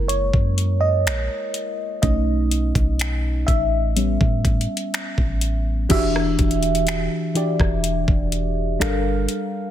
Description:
contemporary R&B; 62 BPM; 4/4; straight; E dorian; A4 = 441 Hz
mellow FM electric piano; accompaniment; 0.0-9.7 s; E3 to F5; -22 LUFS; equal; chorus, phaser
soft 808-style bass; bass; 0.0-9.3 s; E1 to A2; -22 LUFS; equal
smooth R&B drum kit; drums; 0.1-9.5 s; crash cymbal, finger snaps, hi-hat, kick drum, rim click; -22 LUFS; equal; soft clipping on snare
little or no reverb; dense, heavily limited modern master; -18 LUFS; side -11 dB against mid
0.0-5.9 A section; 5.9-9.7 B section
FM electric piano solo 0.0-5.9
0.0 F#9; 2.0 B9; 4.0 A9; 5.9 Em9; 8.8 Gm7

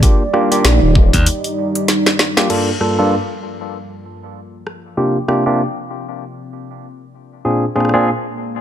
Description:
glitch hop; 97 BPM; 4/4; swing 58% on 16ths; G minor; A4 = 439 Hz
dark analog pad; sustained chords; 0.0-8.6 s; G3 to D5; -23 LUFS; right 1 dB; chorus, sidechain pumping
barky tine electric piano; stabs; 0.0-8.1 s; G2 to A4; -17 LUFS; equal; sidechain pumping, low-pass filter, ping-pong delay
drum and bass drum kit; drums; 0.0-7.9 s; crash cymbal, hi-hat, rim click, snare drum; -18 LUFS; equal; overdrive, small room ambience
electronic kick drum; drums; 0.0-1.2 s; -12 LUFS; equal; overdrive, small room ambience
phased detuned saw bass; bass; 0.6-1.1 s; Eb1 to Bb1; -12 LUFS; equal; phaser
slap bass; bass; 1.1-1.3 s; Eb2; -14 LUFS; equal; tube saturation
light reverb; -13 LUFS; side -10 dB against mid
0.0-2.5 A section; 2.5-8.6 B section
break 1.3-2.5; drum fill 1.9-2.5; filter sweep on tine electric piano 2.5-8.6; filter sweep on analog synth pad 2.5-8.6
0.0 Ebmaj7; 2.5 Gm7; 5.0 C9sus4; 7.4 Bb7

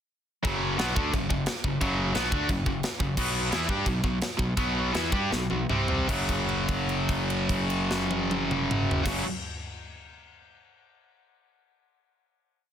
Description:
heavy metal; 150-176 BPM; 4/4; straight; A4 = 441 Hz
high-gain distorted guitar; riff; 0.4-9.2 s; F#2 to G4; -27 LUFS; equal; distortion
fuzz fingered electric bass; bass; 0.4-9.2 s; F#1 to G2; -33 LUFS; equal; overdrive
tight metal drum kit; drums; 0.4-9.2 s; china cymbal, crash cymbal, kick drum, snare drum, toms; -30 LUFS; equal; soft clipping on kick
small room ambience; dense, heavily limited modern master; -25 LUFS; side -9 dB against mid
0.4-6.1 riff; 6.1-9.3 final chord
slowing down 3.2-6.1; drum fill 5.3-6.1; held note 6.1-9.0
0.4 F#5; 3.2 B5; 5.7 C5; 6.1 F#5

